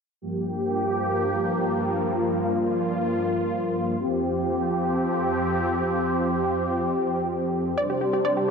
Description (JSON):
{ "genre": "house", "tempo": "free time", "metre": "none", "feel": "none", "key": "G minor", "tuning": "A4 = 438 Hz", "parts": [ { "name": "filtered supersaw swell", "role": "sustained chords", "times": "0.2-8.5 s", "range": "F2 to C5", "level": "-23 LUFS", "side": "equal", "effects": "none" }, { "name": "wide unison pluck", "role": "arpeggios", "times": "7.8-8.5 s", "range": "G4 to D5", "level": "-23 LUFS", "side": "equal", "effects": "ping-pong delay" } ], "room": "moderate huge ambient reverb, RT60 4.9 s", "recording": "none", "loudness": "-22 LUFS", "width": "side -5 dB against mid", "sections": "0.2-8.5 A section", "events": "none", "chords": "0.2 Gm7; 4.0 Fsus2; 7.8 Csus2", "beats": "free time" }